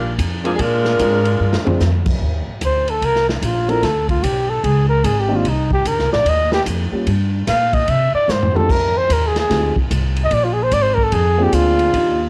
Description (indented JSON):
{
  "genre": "jazz, big band swing",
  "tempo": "148 BPM",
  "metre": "4/4",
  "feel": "swing 64% on 8ths",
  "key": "Eb major",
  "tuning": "A4 = 440 Hz",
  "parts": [
    { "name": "warm saxophone section", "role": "melody", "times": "0.0-1.8 s", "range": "F3 to Bb4", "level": "-21 LUFS", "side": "equal", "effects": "cassette tape" },
    { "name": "upright bass", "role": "bass", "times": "0.0-12.3 s", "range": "Ab1 to C3", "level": "-22 LUFS", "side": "equal", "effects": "none" },
    { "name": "swinging big-band drum kit", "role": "drums", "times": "0.2-12.1 s", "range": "crash cymbal, hi-hat, kick drum, ride cymbal, snare drum, toms", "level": "-25 LUFS", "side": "equal", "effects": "cassette tape" },
    { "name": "dark grand piano", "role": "accompaniment", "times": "0.4-12.2 s", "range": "Eb3 to C5", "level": "-24 LUFS", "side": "equal", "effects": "cassette tape" },
    { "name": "breathy trumpet", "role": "melody", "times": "2.7-12.3 s", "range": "D4 to F5", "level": "-20 LUFS", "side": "equal", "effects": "cassette tape" }
  ],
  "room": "light reverb, small room ambience",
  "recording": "home recording on cassette",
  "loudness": "-17 LUFS",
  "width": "mono",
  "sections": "0.0-2.2 A section; 2.2-12.3 B section",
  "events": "drum fill 1.4-1.8, 8.3-8.7; trumpet solo 2.2-12.3",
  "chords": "0.0 Gm7 (rootless); 0.6 Bb9; 2.2 Eb5; 3.8 Bm7; 4.6 Dbsus2; 5.4 Cm7; 7.1 Gm7; 7.9 C5; 8.7 Fm7; 10.3 Bb7"
}